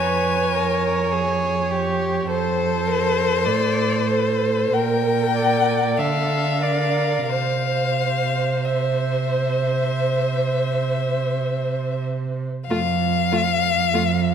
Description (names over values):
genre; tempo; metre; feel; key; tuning
classical, slow romantic movement for string quartet; 44-53 BPM; 4/4; rubato; F major; A4 = 440 Hz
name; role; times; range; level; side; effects
warm violin; melody; 0.0-14.3 s; C5 to Ab5; -24 LUFS; left 8 dB; none
warm violin; second line; 0.0-14.0 s; F4 to D5; -26 LUFS; left 1 dB; none
warm viola; accompaniment; 0.0-14.0 s; A3 to E5; -25 LUFS; right 2 dB; none
warm cello; bass; 0.0-14.3 s; F2 to D3; -24 LUFS; right 5 dB; none
room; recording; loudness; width
moderate scoring stage reverb, RT60 1.7 s; none; -19 LUFS; side -8 dB against mid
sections
0.0-12.7 A section; 12.7-14.3 B section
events
none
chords
0.0 Fdim; 2.3 F; 4.7 Bbmaj7; 7.3 C; 12.7 F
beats
1.12 | 2.30 3.46 4.73 5.98 | 7.28 8.65 10.02 11.37 | 12.70 13.93